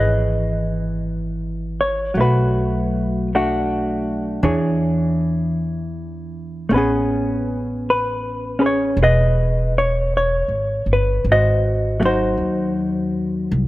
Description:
jazz ballad; 53 BPM; 4/4; swing 66% on 8ths; A4 = 441 Hz
hollow-body jazz guitar; accompaniment; 0.0-13.7 s; E3 to D#5; -19 LUFS; equal
upright bass; bass; 0.0-13.7 s; E1 to E2; -22 LUFS; equal
moderate plate reverb, RT60 2.8 s; -17 LUFS; side -17 dB against mid
0.0-13.7 A section
0.0 C#m9; 2.1 Bm7; 4.4 E13; 6.7 Amaj9; 11.2 G#7

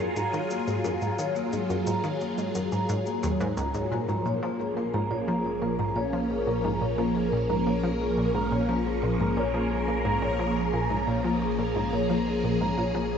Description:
ambient, sequencer-driven space music; 88 BPM; 4/4; straight; Bb minor; A4 = 442 Hz
phased string machine; sustained chords; 0.0-13.2 s; F3 to Bb4; -28 LUFS; right 1 dB; ensemble chorus, phaser
vibraphone with soft mallets; arpeggios; 0.0-13.2 s; Bb3 to Bb5; -30 LUFS; left 3 dB; auto-pan, ping-pong delay
analog pluck; riff; 0.0-13.0 s; Db2 to F3; -30 LUFS; equal; chorus, cassette tape, ping-pong delay
shaker and percussion blips; percussion; 0.2-3.9 s; -43 LUFS; left 3 dB; ping-pong delay
round analog bass; bass; 3.9-13.2 s; Bb1; -36 LUFS; equal
wet huge ambient reverb, RT60 8.2 s; nothing above 8.0 kHz; -24 LUFS; side -7 dB against mid
0.0-3.9 A section; 3.9-13.2 B section
filter sweep on synth arpeggio sound 0.0-3.9
0.0 Ab5; 3.9 Bbm7

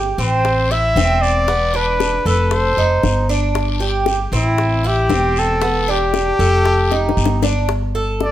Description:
latin, Cuban son and guajira; 116 BPM; 4/4; straight; G major; A4 = 440 Hz
Cuban tres; arpeggios; 0.0-8.3 s; B3 to A4; -21 LUFS; right 3 dB
upright bass; bass; 0.0-8.3 s; E1 to A1; -19 LUFS; equal
breathy trumpet; melody; 0.2-8.3 s; E4 to E5; -18 LUFS; left 1 dB
bongos; percussion; 0.2-8.3 s; -24 LUFS; left 8 dB
guiro; percussion; 0.2-7.7 s; -30 LUFS; left 7 dB
light reverb; -14 LUFS; side -12 dB against mid
0.0-7.7 A section
drum fill 6.9-7.7
0.4 Am; 1.5 E5; 2.5 F7; 3.5 Gsus2; 4.6 Am7; 5.6 Em7; 6.7 F7; 7.7 Gsus2

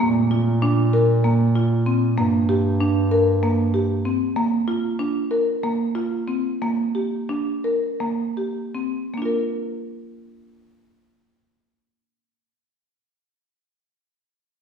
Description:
contemporary instrumental, contemporary; 152-193 BPM (eighths); 7/8; straight; Bb major; A4 = 438 Hz
marimba with medium mallets; arpeggios; 0.0-12.5 s; Bb3 to Bb4; -21 LUFS; equal
mellow bass clarinet; bass; 0.0-4.3 s; G2 to Bb2; -21 LUFS; right 1 dB
wet recital hall reverb, RT60 1.4 s; recorded in a church or concert hall; -19 LUFS; side -7 dB against mid
0.0-9.1 A section; 9.1-14.6 B section
slowing down 4.4-9.1
0.0 Bb5; 2.2 Gm; 4.4 Bb; 6.6 Gm; 9.1 Bb

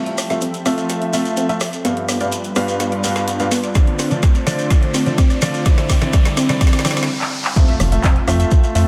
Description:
progressive house; 126 BPM; 4/4; straight; A4 = 441 Hz
airy breathy pad; sustained chords; 0.0-8.9 s; F3 to E5; -28 LUFS; equal; chorus, sidechain pumping
unison pluck; arpeggios; 0.0-8.9 s; B3 to E5; -27 LUFS; equal; sidechain pumping, delay
felt-muted upright piano; stabs; 0.0-8.9 s; G2 to F5; -24 LUFS; equal; sidechain pumping, delay
riser and impact; sound effects; 0.0-8.9 s; -32 LUFS; equal
deep house drum kit; drums; 0.1-8.8 s; handclaps, hi-hat, rim click, snare drum; -27 LUFS; equal; high-pass filter on snare, sidechain pumping on hats, high-pass filter on hats, high-pass filter on room
shekere; percussion; 0.2-8.9 s; -31 LUFS; equal
electronic kick drum; drums; 3.8-8.6 s; -16 LUFS; equal
plucky analog bass; bass; 7.8-8.8 s; F1 to F2; -19 LUFS; equal; sidechain pumping
congas; percussion; 7.8-7.9 s; -30 LUFS; equal
light reverb; -17 LUFS; mono
0.0-7.6 A section; 7.6-8.9 B section
build-up 0.0-7.6; drum fill 0.0-7.1, 7.2-7.6; riser 0.0-7.6; filter sweep on synth pluck 0.0-7.6; stop 7.1-7.6; drop 7.6-8.9; impact 7.6-8.9
0.0 Fmaj7; 1.8 G7; 3.8 Dm7; 5.7 C; 7.6 Fmaj7

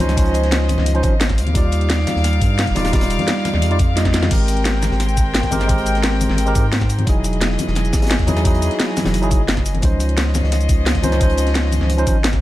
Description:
liquid drum and bass; 174 BPM; 4/4; straight; A4 = 441 Hz
tine electric piano; accompaniment; 0.0-12.2 s; F3 to Eb5; -23 LUFS; right 1 dB; tape echo
rich chamber string section; sustained chords; 0.0-12.4 s; E3 to D6; -25 LUFS; left 2 dB
saturated sub bass; bass; 0.0-12.4 s; Eb1 to Ab2; -19 LUFS; equal
crunchy breakbeat drum kit; drums; 0.0-12.4 s; hi-hat, snare drum; -30 LUFS; equal; high-pass filter on hats, high-pass filter on snare, high-pass filter on room
drum and bass drum kit; drums; 0.0-12.4 s; crash cymbal, hi-hat, shaker, snare drum; -22 LUFS; equal
electronic kick drum; drums; 0.2-12.4 s; -18 LUFS; equal
congas; percussion; 0.7-11.9 s; -27 LUFS; left 4 dB
small room ambience; -15 LUFS; side -15 dB against mid
0.0-12.4 A section
drum fill 4.0-4.3
0.0 Dbmaj9; 1.4 Ebmaj9; 4.3 Abmaj9; 7.1 Emaj9; 9.8 Dbmaj9

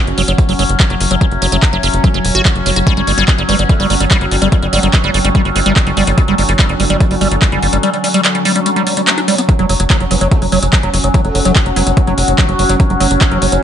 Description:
psychedelic trance; 145 BPM; 4/4; straight; A4 = 440 Hz
overtone-sweeping drone; sustained chords; 0.0-13.6 s; F#3 to C#4; -18 LUFS; left 1 dB; chorus, built-in reverb, phaser, sidechain pumping
warbly tape-like pad; texture; 1.0-13.6 s; D3 to G5; -24 LUFS; equal; chorus, built-in reverb, phaser, sidechain pumping
tight sequencer bass; bass; 0.1-13.6 s; E1 to G1; -16 LUFS; equal
big-room dance drum kit; drums; 0.1-13.6 s; handclaps, hi-hat; -18 LUFS; equal
liquid acid bass; riff; 0.2-13.6 s; F#3 to F#4; -16 LUFS; moving between left 3 dB and right 4 dB; phaser, auto-pan, sidechain pumping, tape echo
electronic kick drum; drums; 0.4-13.3 s; -12 LUFS; equal
formant-sweep wobble bass; second line; 3.5-5.7, 10.1-11.9 s; E3 to B3; -29 LUFS; right 2 dB
light reverb; nothing above 10.8 kHz; -10 LUFS; side -9 dB against mid
0.0-13.6 A section
fade-in on ambient pad 0.0-13.6
0.0 F#5; 2.9 G5; 9.5 F#5

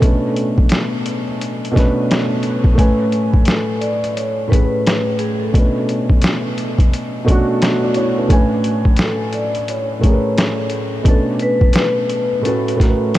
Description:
lo-fi hip hop; 87 BPM; 4/4; swing 62% on 16ths; A major; A4 = 440 Hz
vibraphone with medium mallets; melody; 0.0-13.2 s; G#4 to D5; -23 LUFS; left 1 dB; low-pass filter, ping-pong delay
felt-muted upright piano; accompaniment; 0.0-13.2 s; A2 to G#5; -18 LUFS; equal; low-pass filter
trip hop sampler-style drum kit; drums; 0.0-13.2 s; hi-hat, kick drum, snare drum; -16 LUFS; equal; overdrive
light reverb, studio reverb; cassette tape; -14 LUFS; side -15 dB against mid
0.0-13.2 A section
0.0 Bm7; 2.8 Amaj9; 5.5 Bm7; 8.3 Amaj9; 11.1 Bm7; 12.4 A6

